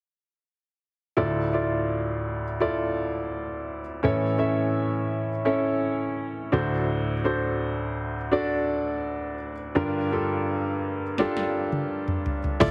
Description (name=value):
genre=piano-driven pop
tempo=84 BPM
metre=4/4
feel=straight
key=D harmonic minor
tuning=A4 = 439 Hz
part: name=clear upright piano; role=accompaniment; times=1.2-12.7 s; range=D2 to E5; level=-27 LUFS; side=equal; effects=none
part: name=house drum kit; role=drums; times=11.2-12.7 s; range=crash cymbal, hi-hat, kick drum, snare drum, toms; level=-31 LUFS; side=equal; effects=none
part: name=vintage muted picked electric bass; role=bass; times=12.6-12.7 s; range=D2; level=-27 LUFS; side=equal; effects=none
room=moderate studio reverb, RT60 0.9 s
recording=heavily compressed radio sound, multiband compression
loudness=-27 LUFS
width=mono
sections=1.2-12.6 A section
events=drum fill 11.2-12.6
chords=1.2 Dmadd9; 4.0 A; 6.5 D7; 9.8 Gm7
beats=| 1.17 1.89 2.60 3.32 | 4.03 4.75 5.46 6.18 | 6.89 7.61 8.32 9.04 | 9.75 10.47 11.18 11.89 | 12.61